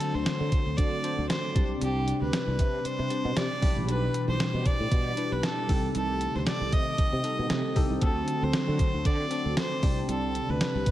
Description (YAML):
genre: 1980s-style pop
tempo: 116 BPM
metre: 4/4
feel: swing 55% on 16ths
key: unclear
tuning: A4 = 439 Hz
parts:
  - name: warm fiddle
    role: melody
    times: 0.0-10.9 s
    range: G4 to Eb5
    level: -32 LUFS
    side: right 1 dB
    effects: digital delay, shimmer reverb
  - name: bell-like tine electric piano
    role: accompaniment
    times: 0.0-10.9 s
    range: B2 to B5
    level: -32 LUFS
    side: left 2 dB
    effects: phaser, shimmer reverb
  - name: phased analog pad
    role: sustained chords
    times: 0.0-10.9 s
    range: B2 to G4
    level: -35 LUFS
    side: right 2 dB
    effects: phaser, chorus, shimmer reverb
  - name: clean 12-bit digital drum machine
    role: drums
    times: 0.0-10.9 s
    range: hi-hat, kick drum, snare drum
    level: -28 LUFS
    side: equal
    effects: gated reverb
  - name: sustaining fretless electric bass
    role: bass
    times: 0.1-10.9 s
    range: A1 to D3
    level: -31 LUFS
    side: equal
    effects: ensemble chorus
room: light reverb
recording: none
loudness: -25 LUFS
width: side -13 dB against mid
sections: 0.0-10.9 A section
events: none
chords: 0.0 D7; 1.6 Csus2; 3.6 Em7; 5.7 Cm6; 8.0 D7; 9.8 Csus2